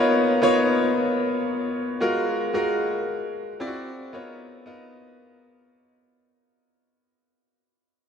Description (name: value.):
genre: pop.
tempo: 113 BPM.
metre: 4/4.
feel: straight.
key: unclear.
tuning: A4 = 442 Hz.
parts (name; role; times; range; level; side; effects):
bright concert grand piano; accompaniment; 0.0-6.3 s; G#3 to D#5; -21 LUFS; left 1 dB; wide subtle chorus.
room: wet cathedral reverb, RT60 7.5 s.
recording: dreamy mix soaked in reverb.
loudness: -21 LUFS.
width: side -7 dB against mid.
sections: 0.0-6.3 A section.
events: fade-out 0.0-6.3.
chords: 0.0 Bmaj9#11; 2.0 F#maj9; 3.6 D9; 4.1 C#13.